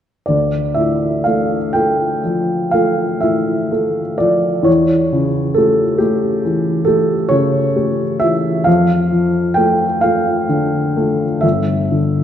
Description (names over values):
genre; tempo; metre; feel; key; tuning
classical, romantic nocturne for solo piano; 40-46 BPM (dotted quarters); 9/8; rubato; D minor; A4 = 441 Hz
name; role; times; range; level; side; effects
clear upright piano; solo; 0.3-12.2 s; G1 to G5; -13 LUFS; equal; none
room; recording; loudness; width
wet recital hall reverb, RT60 1.9 s; dark, warm production; -13 LUFS; side -9 dB against mid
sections
0.3-12.2 A section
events
none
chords
0.3 Dm; 4.7 A7/E; 8.7 Dm/F; 11.4 G5